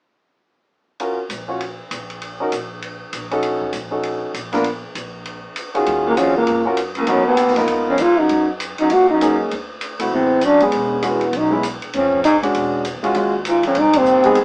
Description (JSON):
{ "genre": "jazz, small-group swing and bop", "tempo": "198 BPM", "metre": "4/4", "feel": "swing 62% on 8ths", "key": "Eb minor", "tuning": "A4 = 438 Hz", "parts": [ { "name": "warm concert grand piano", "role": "accompaniment", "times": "1.0-14.4 s", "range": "Eb3 to Db5", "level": "-22 LUFS", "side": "equal", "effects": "none" }, { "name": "open jazz drum kit", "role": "drums", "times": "1.0-14.4 s", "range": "hi-hat, kick drum, ride cymbal, snare drum", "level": "-31 LUFS", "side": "equal", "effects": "none" }, { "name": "upright bass", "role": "bass", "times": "1.3-14.4 s", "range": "E1 to Db3", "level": "-38 LUFS", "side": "equal", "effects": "none" }, { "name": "mellow trombone", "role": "melody", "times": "6.1-14.4 s", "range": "Bb3 to Gb4", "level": "-18 LUFS", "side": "equal", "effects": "none" }, { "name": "warm baritone saxophone", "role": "second line", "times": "6.1-14.4 s", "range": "Db2 to Bb2", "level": "-25 LUFS", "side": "equal", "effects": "none" } ], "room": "moderate studio reverb, RT60 0.5 s", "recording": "band playing live in one room, small speaker sound", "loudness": "-18 LUFS", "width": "mono", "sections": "1.0-5.9 A section; 5.9-14.4 B section", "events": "band accent 13.9", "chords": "1.0 Bbm; 2.2 Bbmadd11; 3.4 B9 (rootless); 4.7 Bb5; 5.9 Ebm11; 7.1 Abm7; 7.7 Db9; 8.3 Gb69; 9.5 D7sus2; 10.7 E69; 11.9 Ebm11/F (rootless); 12.5 E13; 13.2 Ebm11; 13.8 Caug" }